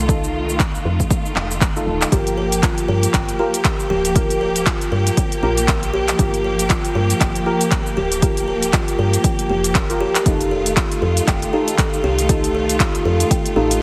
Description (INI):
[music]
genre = afro house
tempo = 118 BPM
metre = 4/4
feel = swing 58% on 16ths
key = G minor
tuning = A4 = 439 Hz
[part]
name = bright studio string section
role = sustained chords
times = 0.0-13.8 s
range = Eb3 to G4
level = -27 LUFS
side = equal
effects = sidechain pumping
[part]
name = deep mellow chord stab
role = stabs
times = 0.0-13.8 s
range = Eb4 to Bb4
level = -27 LUFS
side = equal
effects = chorus, sidechain pumping, tape echo
[part]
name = woody FM bass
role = bass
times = 0.0-13.8 s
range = D1 to G2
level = -25 LUFS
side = equal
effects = sidechain pumping
[part]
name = afro-pop drum kit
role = drums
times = 0.1-13.8 s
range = handclaps, hi-hat, shaker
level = -25 LUFS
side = equal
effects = none
[part]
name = electronic kick drum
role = drums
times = 0.1-13.4 s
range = none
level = -22 LUFS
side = equal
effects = overdrive
[part]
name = buzzing kalimba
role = arpeggios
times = 2.1-13.7 s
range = F4 to G5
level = -24 LUFS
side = equal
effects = sidechain pumping, tape echo
[sound]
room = moderate digital room reverb, RT60 1.1 s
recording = heavily compressed radio sound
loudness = -18 LUFS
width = mono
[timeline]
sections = 0.0-13.8 A section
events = none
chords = 0.0 F7; 2.1 Gm7; 10.3 F7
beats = | 0.09 0.60 1.11 1.61 | 2.12 2.63 3.14 3.65 | 4.16 4.67 5.17 5.68 | 6.19 6.70 7.21 7.72 | 8.22 8.73 9.24 9.75 | 10.26 10.77 11.28 11.78 | 12.29 12.80 13.31 13.82